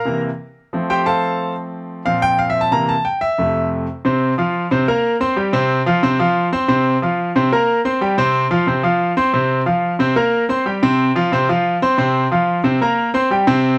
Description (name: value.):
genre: latin.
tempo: 181 BPM.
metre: 4/4.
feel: straight.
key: F major.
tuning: A4 = 440 Hz.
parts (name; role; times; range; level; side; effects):
bright grand piano; solo; 0.0-13.7 s; F2 to C6; -17 LUFS; equal; none.
room: moderate studio reverb, RT60 0.8 s.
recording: none.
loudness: -17 LUFS.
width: mono.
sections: 0.0-4.0 A section; 4.0-13.8 B section.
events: grand piano solo 0.0-4.0.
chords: 0.1 C7; 0.7 Fadd9; 2.1 Bbsus2; 2.7 C7; 3.4 F; 4.0 F5; 4.7 Bbsus2; 5.4 C5; 6.0 F5; 7.3 Bbsus2; 8.0 C5; 8.7 F5; 10.0 Bbsus2; 10.7 C5; 11.3 F5; 12.6 Bbsus2.